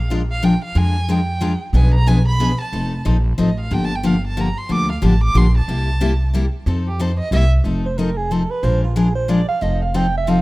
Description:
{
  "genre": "acoustic string swing (jazz manouche)",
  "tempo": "183 BPM",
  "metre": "3/4",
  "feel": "swing 60% on 8ths",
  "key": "F mixolydian",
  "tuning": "A4 = 440 Hz",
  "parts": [
    { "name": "dark violin", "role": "melody", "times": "0.0-7.4 s", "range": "G4 to D6", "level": "-26 LUFS", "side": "right 2 dB", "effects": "none" },
    { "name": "upright bass", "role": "bass", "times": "0.0-10.4 s", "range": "F1 to F2", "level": "-18 LUFS", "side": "equal", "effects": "none" },
    { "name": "picked steel-string acoustic guitar", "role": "accompaniment", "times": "0.1-10.4 s", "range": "B2 to B4", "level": "-20 LUFS", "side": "left 2 dB", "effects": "none" },
    { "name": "breathy soprano saxophone", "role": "second line", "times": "7.9-10.4 s", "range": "F4 to G5", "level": "-22 LUFS", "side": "right 4 dB", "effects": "none" }
  ],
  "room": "small room ambience",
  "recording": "rough home demo mix",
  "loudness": "-15 LUFS",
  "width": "side -20 dB against mid",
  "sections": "0.0-7.7 A section; 7.7-10.4 A section",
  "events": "violin solo 0.0-7.7; soprano saxophone solo 7.7-10.4",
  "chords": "0.0 Bb7; 1.7 Bdim7; 2.7 F7; 3.7 Gm7; 5.7 C7; 6.7 F7; 7.3 C7; 7.7 F7; 8.6 Bb7; 9.6 F7"
}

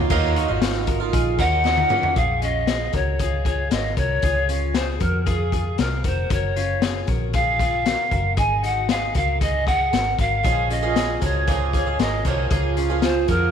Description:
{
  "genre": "jangly indie pop",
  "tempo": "116 BPM",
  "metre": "4/4",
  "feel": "straight",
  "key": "Bb minor",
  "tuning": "A4 = 440 Hz",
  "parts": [
    { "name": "picked twelve-string acoustic guitar", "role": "accompaniment", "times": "0.0-2.2, 10.4-13.5 s", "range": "Bb2 to Ab4", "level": "-24 LUFS", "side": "right 12 dB", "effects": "none" },
    { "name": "twelve-string electric guitar", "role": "arpeggios", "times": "0.0-13.5 s", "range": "Bb3 to Bb4", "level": "-29 LUFS", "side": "left 10 dB", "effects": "none" },
    { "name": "vintage muted fingered electric bass", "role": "bass", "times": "0.0-13.5 s", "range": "F1 to F2", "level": "-24 LUFS", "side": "equal", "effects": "none" },
    { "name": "raw garage drum kit", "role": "drums", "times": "0.1-13.4 s", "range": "crash cymbal, hi-hat, kick drum, snare drum, toms", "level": "-25 LUFS", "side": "left 3 dB", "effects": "none" },
    { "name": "breathy pan flute", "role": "melody", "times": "1.4-13.5 s", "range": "Ab4 to Ab5", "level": "-23 LUFS", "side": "equal", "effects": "slapback echo" }
  ],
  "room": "light reverb, small room reverb",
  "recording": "1960s-style stereo with parts hard left and right",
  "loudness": "-19 LUFS",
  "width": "side -8 dB against mid",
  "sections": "0.1-2.2 A section; 2.2-13.5 B section",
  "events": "drum fill 1.6-2.2",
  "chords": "0.1 Ebmadd9; 2.2 Bbm7; 4.2 Db6; 6.3 Gbmaj7; 8.4 Ab7sus4; 10.4 Bbm7; 12.5 Db6"
}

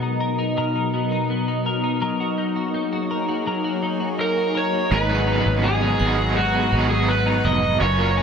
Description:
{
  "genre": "dream pop",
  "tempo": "83 BPM",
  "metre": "4/4",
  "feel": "straight",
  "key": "G# minor",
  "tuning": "A4 = 440 Hz",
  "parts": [
    { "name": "shimmering ambient pad", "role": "sustained chords", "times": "0.0-8.2 s", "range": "F#3 to C#6", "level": "-26 LUFS", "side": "left 1 dB", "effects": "chorus, built-in reverb" },
    { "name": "clean electric guitar", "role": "arpeggios", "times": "0.0-8.2 s", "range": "F#2 to A#4", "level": "-24 LUFS", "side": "left 2 dB", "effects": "analog chorus, ping-pong delay" },
    { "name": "overdriven slide guitar", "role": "melody", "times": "4.2-8.2 s", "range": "F#4 to D#5", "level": "-22 LUFS", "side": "right 1 dB", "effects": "ping-pong delay" },
    { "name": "crunchy overdriven guitar", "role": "accompaniment", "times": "4.9-8.2 s", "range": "G#2 to A#4", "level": "-24 LUFS", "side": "right 5 dB", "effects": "tremolo, lush chorus" },
    { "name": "fingered electric bass", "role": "bass", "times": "4.9-8.2 s", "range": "E#1 to G#1", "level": "-24 LUFS", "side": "right 1 dB", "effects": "none" },
    { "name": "vibraphone with hard mallets", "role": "texture", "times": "4.9-7.5 s", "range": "D#5 to F#5", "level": "-35 LUFS", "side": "right 2 dB", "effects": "ping-pong delay" }
  ],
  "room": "moderate plate reverb, RT60 3.5 s",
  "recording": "none",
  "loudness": "-19 LUFS",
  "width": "side -6 dB against mid",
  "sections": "0.0-4.9 A section; 4.9-8.2 B section",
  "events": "none",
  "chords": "0.0 Bmaj7; 2.0 F#69; 4.9 G#m11"
}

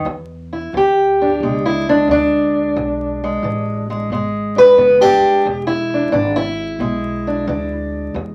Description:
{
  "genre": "acoustic country blues, solo or duo",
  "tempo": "89 BPM",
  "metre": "4/4",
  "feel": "swing 68% on 8ths",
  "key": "E mixolydian",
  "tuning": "A4 = 440 Hz",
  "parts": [
    { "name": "fingerpicked steel-string acoustic guitar", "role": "melody", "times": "0.0-8.3 s", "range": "E2 to B4", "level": "-16 LUFS", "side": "equal", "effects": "none" },
    { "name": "upright bass", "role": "bass", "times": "0.0-8.3 s", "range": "E1 to E2", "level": "-31 LUFS", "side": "equal", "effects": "none" }
  ],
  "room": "moderate small room reverb, RT60 0.5 s",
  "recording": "vinyl crackle",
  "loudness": "-16 LUFS",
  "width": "mono",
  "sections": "0.1-8.3 A section",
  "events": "steel-string acoustic guitar solo 0.1-8.3",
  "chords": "0.1 E7"
}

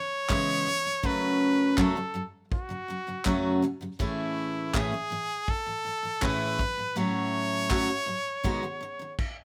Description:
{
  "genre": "acoustic pop",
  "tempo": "81 BPM",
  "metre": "4/4",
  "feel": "straight",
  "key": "unclear",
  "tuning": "A4 = 441 Hz",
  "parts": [
    { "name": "brilliant trumpet", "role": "melody", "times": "0.0-9.2 s", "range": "E4 to C#5", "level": "-32 LUFS", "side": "equal", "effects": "none" },
    { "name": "picked steel-string acoustic guitar", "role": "accompaniment", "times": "0.0-9.2 s", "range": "F#2 to G#4", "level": "-31 LUFS", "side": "equal", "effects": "none" },
    { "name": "loose indie drum kit", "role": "drums", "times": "0.3-9.4 s", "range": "crash cymbal, handclaps, kick drum", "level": "-32 LUFS", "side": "equal", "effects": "none" }
  ],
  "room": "light reverb",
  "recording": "none",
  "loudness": "-28 LUFS",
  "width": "mono",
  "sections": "0.0-9.4 A section",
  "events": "none",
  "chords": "0.0 C#m7; 1.0 F#m; 4.0 Amaj7; 6.6 F#m/A; 8.4 B6"
}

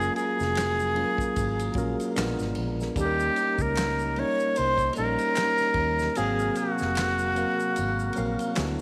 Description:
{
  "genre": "R&B, neo-soul",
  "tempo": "75 BPM",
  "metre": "4/4",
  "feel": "swing 57% on 16ths",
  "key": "unclear",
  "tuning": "A4 = 442 Hz",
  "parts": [
    { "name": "breathy silver concert flute", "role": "melody", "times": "0.0-8.8 s", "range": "Gb4 to Db5", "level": "-29 LUFS", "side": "equal", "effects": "none" },
    { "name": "mellow tine electric piano", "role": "accompaniment", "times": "0.0-8.8 s", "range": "Gb3 to F5", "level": "-33 LUFS", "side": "equal", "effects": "none" },
    { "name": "mellow tonewheel organ", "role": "sustained chords", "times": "0.0-8.8 s", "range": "Cb3 to F5", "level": "-40 LUFS", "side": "equal", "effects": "fast rotary speaker, overdrive" },
    { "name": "vintage muted fingered electric bass", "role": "bass", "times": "0.0-8.8 s", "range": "F1 to Eb2", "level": "-34 LUFS", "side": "equal", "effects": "none" },
    { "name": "tube shaker and finger snaps", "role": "percussion", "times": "0.0-8.8 s", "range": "none", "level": "-47 LUFS", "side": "equal", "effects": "none" },
    { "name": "unplugged drum kit", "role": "drums", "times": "0.2-8.8 s", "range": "handclaps, kick drum, ride cymbal, snare drum", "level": "-37 LUFS", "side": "equal", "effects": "none" },
    { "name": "mellow saxophone section", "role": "stabs", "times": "8.6-8.7 s", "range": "B2 to E4", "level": "-42 LUFS", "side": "equal", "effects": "none" }
  ],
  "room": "moderate echo chamber reverb, RT60 2.3 s",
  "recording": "none",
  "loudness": "-26 LUFS",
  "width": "mono",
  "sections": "0.0-8.8 A section",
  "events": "kick muted 6.2-8.8; band accent 6.2-8.8",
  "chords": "0.0 Gbmaj9; 2.2 Bb7b9; 3.0 Eb7; 6.2 Ab13"
}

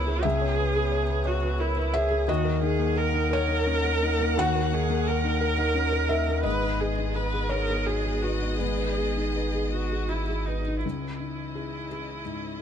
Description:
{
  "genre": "neoclassical piano and strings",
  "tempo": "53-59 BPM (dotted quarters)",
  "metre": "6/8",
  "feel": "rubato",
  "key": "C# dorian",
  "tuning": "A4 = 439 Hz",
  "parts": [
    { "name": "felt-muted upright piano", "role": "accompaniment", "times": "0.0-12.6 s", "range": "C#2 to F#5", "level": "-28 LUFS", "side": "left 2 dB", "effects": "none" },
    { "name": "rich viola", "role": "accompaniment", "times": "0.0-12.6 s", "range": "D#4 to B4", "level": "-29 LUFS", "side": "right 3 dB", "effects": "none" },
    { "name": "rich chamber string section", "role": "sustained chords", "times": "0.0-12.6 s", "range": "E3 to F#5", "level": "-36 LUFS", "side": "left 4 dB", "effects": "none" },
    { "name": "punchy sub bass", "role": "bass", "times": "0.0-10.8 s", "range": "G#1 to D#2", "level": "-29 LUFS", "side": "right 1 dB", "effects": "none" }
  ],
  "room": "light reverb",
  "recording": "close, detailed microphones",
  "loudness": "-24 LUFS",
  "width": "side -8 dB against mid",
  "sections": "0.0-10.8 A section; 10.8-12.6 B section",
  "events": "none",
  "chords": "0.0 C#m7; 2.3 D#m; 6.4 G#m; 10.8 C#madd9"
}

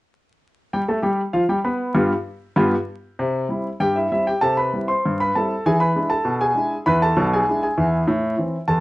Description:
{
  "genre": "ragtime piano",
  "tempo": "98 BPM",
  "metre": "2/4",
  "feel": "straight",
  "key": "C major",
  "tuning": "A4 = 441 Hz",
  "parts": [
    { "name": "warm grand piano", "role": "solo", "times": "0.7-8.8 s", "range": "B1 to C6", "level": "-18 LUFS", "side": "equal", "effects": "none" }
  ],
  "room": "moderate studio reverb, RT60 0.6 s",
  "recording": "vinyl crackle, nothing above 10.8 kHz",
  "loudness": "-18 LUFS",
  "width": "side -19 dB against mid",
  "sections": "0.7-3.2 A section; 3.2-8.8 B section",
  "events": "none",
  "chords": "0.7 G9; 2.0 G7; 3.2 C; 5.6 E7; 8.1 Am"
}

